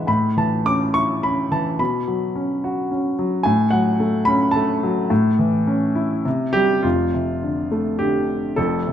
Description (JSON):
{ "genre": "classical, lyrical solo piano", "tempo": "106 BPM", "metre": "3/4", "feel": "uneven beats, rubato", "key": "A major", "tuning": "A4 = 440 Hz", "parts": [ { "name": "warm baby grand piano", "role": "solo", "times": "0.0-8.9 s", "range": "F1 to D6", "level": "-18 LUFS", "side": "equal", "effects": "none" } ], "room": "wet recital hall reverb, RT60 1.5 s", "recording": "minimal, uncompressed stereo recording", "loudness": "-18 LUFS", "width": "side -9 dB against mid", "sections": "0.0-6.8 A section; 6.8-8.9 B section", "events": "none", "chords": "0.1 A; 1.8 Bsus2; 3.5 F#m/A; 5.1 A; 6.3 C5; 6.8 F69" }